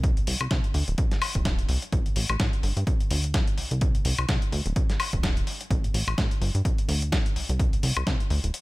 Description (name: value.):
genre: filtered disco house.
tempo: 127 BPM.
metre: 4/4.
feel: swing 57% on 16ths.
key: unclear.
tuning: A4 = 440 Hz.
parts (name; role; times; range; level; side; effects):
plucky analog bass; bass; 0.0-8.5 s; D1 to C3; -27 LUFS; equal; sidechain pumping, low-pass filter.
dusty soul sampler-style drum kit; drums; 0.0-8.6 s; hi-hat, snare drum, woodblock; -30 LUFS; left 2 dB; sidechain pumping on hats, sidechain pumping on perc.
electronic kick drum; drums; 0.0-8.2 s; none; -25 LUFS; equal; none.
room: little or no reverb.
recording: none.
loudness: -23 LUFS.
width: side -20 dB against mid.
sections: 0.0-8.6 A section.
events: filter sweep on analog synth bass 0.0-8.6.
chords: none.